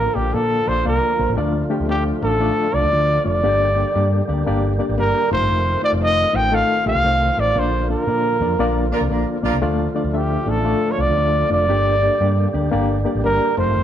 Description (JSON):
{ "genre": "soul", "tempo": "116 BPM", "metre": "4/4", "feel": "swing 64% on 8ths", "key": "D minor", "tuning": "A4 = 441 Hz", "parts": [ { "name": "breathy trumpet", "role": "melody", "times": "0.0-13.8 s", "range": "G4 to G5", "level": "-19 LUFS", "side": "right 1 dB", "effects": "none" }, { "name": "reed electric piano", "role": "accompaniment", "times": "0.0-13.8 s", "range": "G2 to E5", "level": "-23 LUFS", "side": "left 3 dB", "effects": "overdrive, fast tremolo" }, { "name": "percussive tonewheel organ", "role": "sustained chords", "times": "0.0-13.8 s", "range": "D3 to G4", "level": "-27 LUFS", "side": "equal", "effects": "slow rotary speaker" }, { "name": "picked electric bass", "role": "bass", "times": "0.0-13.8 s", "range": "F1 to Bb2", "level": "-22 LUFS", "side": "equal", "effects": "none" }, { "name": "mellow horn section", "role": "second line", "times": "8.6-9.6 s", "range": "Bb3 to Bb4", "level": "-26 LUFS", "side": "right 4 dB", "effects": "none" } ], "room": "moderate stone room reverb, RT60 1.3 s", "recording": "band playing live in one room", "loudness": "-16 LUFS", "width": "side -10 dB against mid", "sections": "0.0-1.4 A section; 1.4-13.8 B section", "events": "trumpet solo 0.0-1.4; band accent 7.6-9.6", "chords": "0.0 Bb; 1.4 Dm; 3.4 Gm; 5.2 F7; 7.6 Bb; 9.6 Dm; 11.7 Gm" }